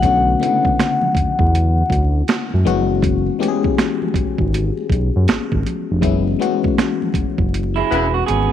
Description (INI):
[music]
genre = R&B, neo-soul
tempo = 80 BPM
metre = 4/4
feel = swing 64% on 16ths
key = unclear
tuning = A4 = 440 Hz
[part]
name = vibraphone with medium hard mallets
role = melody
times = 0.0-2.1 s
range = F#5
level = -19 LUFS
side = left 3 dB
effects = none
[part]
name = FM electric piano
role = accompaniment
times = 0.0-8.5 s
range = C#3 to G#4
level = -21 LUFS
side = left 8 dB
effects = chorus
[part]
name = smooth synth bass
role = bass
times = 0.0-8.5 s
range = E1 to F#2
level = -18 LUFS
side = equal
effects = none
[part]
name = boom bap sampler-style drum kit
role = drums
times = 0.0-8.5 s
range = finger snaps, hi-hat, kick drum, snare drum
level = -20 LUFS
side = right 2 dB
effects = none
[part]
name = congas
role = percussion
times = 0.4-8.5 s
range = none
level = -30 LUFS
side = right 3 dB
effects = none
[part]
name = electric guitar through a small old amp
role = second line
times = 7.8-8.5 s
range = G#3 to G#4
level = -18 LUFS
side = right 11 dB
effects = none
[part]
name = clear horn section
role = stabs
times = 7.9-8.1 s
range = C#3 to E4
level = -23 LUFS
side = left 10 dB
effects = none
[sound]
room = moderate plate reverb, RT60 2.0 s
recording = 1960s-style stereo with parts hard left and right, vinyl crackle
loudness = -15 LUFS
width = side -10 dB against mid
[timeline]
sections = 0.0-8.5 A section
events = band accent 6.0-8.5; drum fill 7.5-8.5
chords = 0.0 Bm7; 2.7 F#9sus4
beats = | 0.03 0.78 1.53 2.28 | 3.03 3.78 4.53 5.28 | 6.03 6.78 7.53 8.28